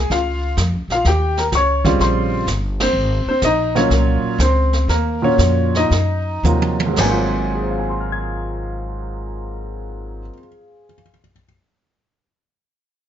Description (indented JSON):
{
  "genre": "jazz piano trio",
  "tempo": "107-127 BPM",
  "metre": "4/4",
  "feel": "swing 69% on 8ths",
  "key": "Ab mixolydian",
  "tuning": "A4 = 440 Hz",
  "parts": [
    { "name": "warm concert grand piano", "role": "melody", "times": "0.0-11.4 s", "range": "Ab2 to Ab6", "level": "-19 LUFS", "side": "equal", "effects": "none" },
    { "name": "upright bass", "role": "bass", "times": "0.0-10.3 s", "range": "G1 to Gb2", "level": "-20 LUFS", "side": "equal", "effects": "none" },
    { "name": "jazz brush drum kit", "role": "drums", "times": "0.1-7.4 s", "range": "brushed snare drum, china cymbal, hi-hat, kick drum, ride cymbal, snare drum, toms", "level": "-24 LUFS", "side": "right 2 dB", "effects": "none" }
  ],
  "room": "light reverb",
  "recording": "nothing above 7.6 kHz",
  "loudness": "-15 LUFS",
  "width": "side -10 dB against mid",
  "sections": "0.0-7.0 A section; 7.0-11.4 B section",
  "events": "band accent 2.7; slowing down 2.9-7.0; drum fill 6.4-7.0",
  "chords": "0.0 Bbm; 1.1 Eb13; 2.9 Ab13"
}